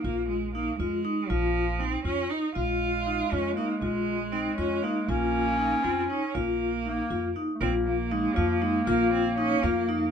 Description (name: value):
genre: contemporary instrumental, chamber music in an uneven meter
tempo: 238 BPM (eighths)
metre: 5/8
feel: straight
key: Bb minor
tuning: A4 = 440 Hz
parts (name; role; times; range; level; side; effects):
- bright cello; melody; 0.0-10.0 s; F3 to F4; -30 LUFS; right 6 dB; none
- vibraphone with medium hard mallets; arpeggios; 0.0-10.1 s; Eb4 to F4; -29 LUFS; left 4 dB; none
- upright bass; bass; 0.0-10.1 s; Bb1 to F2; -33 LUFS; right 1 dB; none
- clear clarinet; second line; 2.6-10.1 s; Ab3 to Db4; -30 LUFS; left 2 dB; none
room: light reverb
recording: minimal, uncompressed stereo recording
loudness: -25 LUFS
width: side -7 dB against mid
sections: 0.0-7.6 A section; 7.6-10.1 B section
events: none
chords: 0.0 Bb5